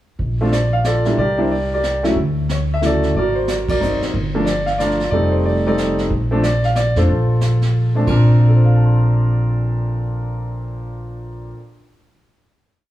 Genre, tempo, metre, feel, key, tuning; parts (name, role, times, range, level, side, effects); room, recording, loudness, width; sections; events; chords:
jazz piano trio; 183 BPM; 3/4; swing 63% on 8ths; Bb major; A4 = 442 Hz
upright bass; bass; 0.2-11.5 s; F1 to F2; -18 LUFS; equal
jazz brush drum kit; drums; 0.2-8.4 s; brushed snare drum, crash cymbal, hi-hat, kick drum, ride cymbal, snare drum; -27 LUFS; right 2 dB
clear concert grand piano; melody; 0.4-11.8 s; Bb2 to F6; -19 LUFS; equal
light reverb; heard from further back in the room, small room ambience; -15 LUFS; side -14 dB against mid
0.2-8.1 A section; 8.1-10.1 final chord
band accent 3.6
0.2 Bbmaj7; 1.2 C9; 2.2 Dmaj9; 3.2 Ab9; 4.1 Gm9; 5.1 F7; 6.1 Bbmaj9